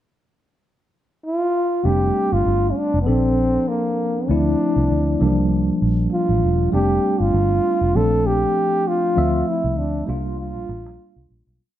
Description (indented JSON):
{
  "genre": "lush 1970s-style soul",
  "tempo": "98 BPM",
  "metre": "4/4",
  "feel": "swing 54% on 16ths",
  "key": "F major",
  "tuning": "A4 = 440 Hz",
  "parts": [
    { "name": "mellow trombone", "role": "melody", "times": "1.2-11.3 s", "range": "Bb3 to A4", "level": "-21 LUFS", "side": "equal", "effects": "none" },
    { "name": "mellow tine electric piano", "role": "accompaniment", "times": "1.8-11.6 s", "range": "E3 to E5", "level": "-22 LUFS", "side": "equal", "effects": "medium stereo tremolo" },
    { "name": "vintage muted fingered electric bass", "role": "bass", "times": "1.8-11.6 s", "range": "E1 to D2", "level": "-21 LUFS", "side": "equal", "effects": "none" }
  ],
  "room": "moderate scoring stage reverb, RT60 1.5 s",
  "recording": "dark, warm production",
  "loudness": "-17 LUFS",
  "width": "side -12 dB against mid",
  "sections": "0.0-1.8 pickup bar; 1.8-11.6 verse",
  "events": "fade-out 9.2-11.6",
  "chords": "0.0 N.C.; 1.8 F69; 3.1 Bbmaj9; 4.3 Dm9; 5.2 C9sus4; 6.7 F69; 7.9 Bbmaj9; 9.2 Dm9; 10.1 C9sus4"
}